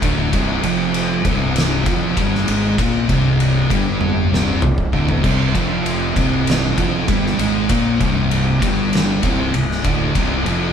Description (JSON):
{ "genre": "stoner and doom metal", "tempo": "98 BPM", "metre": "4/4", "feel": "straight", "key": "unclear", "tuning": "A4 = 440 Hz", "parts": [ { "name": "thick fuzz guitar", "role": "riff", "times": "0.0-10.7 s", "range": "C2 to Bb3", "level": "-21 LUFS", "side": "left 8 dB", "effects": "distortion" }, { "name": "thick fuzz guitar", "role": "riff", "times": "0.0-10.7 s", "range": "C2 to Bb3", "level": "-22 LUFS", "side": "right 7 dB", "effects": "distortion" }, { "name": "thick fuzz guitar", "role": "riff", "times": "0.0-10.7 s", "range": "C2 to Bb3", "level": "-25 LUFS", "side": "equal", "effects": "distortion" }, { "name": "fuzz fingered electric bass", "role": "bass", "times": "0.0-10.7 s", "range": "C1 to Bb1", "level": "-23 LUFS", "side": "equal", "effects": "overdrive" }, { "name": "oversized low-tuned drum kit", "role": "drums", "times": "0.0-10.6 s", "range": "crash cymbal, kick drum, ride cymbal, snare drum, toms", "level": "-20 LUFS", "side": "equal", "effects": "none" } ], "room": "moderate studio reverb, RT60 0.8 s", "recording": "band playing live in one room", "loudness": "-15 LUFS", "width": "side -8 dB against mid", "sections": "0.0-10.7 A section", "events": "drum fill 4.0-5.2", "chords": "0.0 C5" }